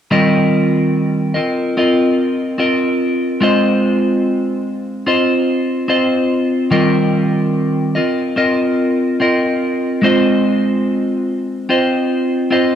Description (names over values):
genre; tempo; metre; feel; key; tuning
indie pop; 72 BPM; 4/4; swing 55% on 16ths; Eb major; A4 = 439 Hz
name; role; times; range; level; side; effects
clean electric guitar; accompaniment; 0.1-12.8 s; Eb3 to Eb5; -13 LUFS; equal; wide subtle chorus, warbly pitch drift
room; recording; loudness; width
moderate plate reverb, RT60 3.1 s; dark, warm production; -13 LUFS; side -9 dB against mid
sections
0.1-12.8 A section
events
none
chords
0.1 Eb69; 3.4 Ab6; 6.7 Eb69; 10.0 Ab6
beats
| 0.11 0.93 1.76 2.59 | 3.41 4.24 5.07 5.89 | 6.72 7.55 8.38 9.21 | 10.03 10.86 11.69 12.51